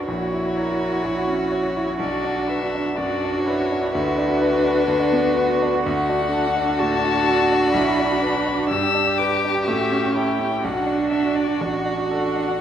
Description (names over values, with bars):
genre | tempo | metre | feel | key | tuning
quick classical-period movement for piano quintet | 125 BPM | 4/4 | straight | B minor, D major from 5.9 s | A4 = 441 Hz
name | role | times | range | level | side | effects
muted violin | melody | 0.0-12.6 s | B4 to E6 | -25 LUFS | left 7 dB | none
muted cello | second line | 0.0-12.6 s | D4 to A#4 | -27 LUFS | right 7 dB | none
muted violin | second line | 0.0-12.6 s | F#4 to G4 | -27 LUFS | left 2 dB | none
bright concert grand piano | accompaniment | 0.0-12.6 s | A1 to C#5 | -24 LUFS | equal | none
muted viola | accompaniment | 0.0-12.6 s | C#4 to E4 | -26 LUFS | right 4 dB | none
room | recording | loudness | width
light reverb | close, detailed microphones | -18 LUFS | side -9 dB against mid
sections
0.0-12.6 A section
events
none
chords
0.1 F#7/A#; 2.0 Bm; 3.9 Bm/D; 5.9 D; 7.8 Bm; 8.7 Em7/G; 9.7 A7; 10.6 Bm; 11.6 D/A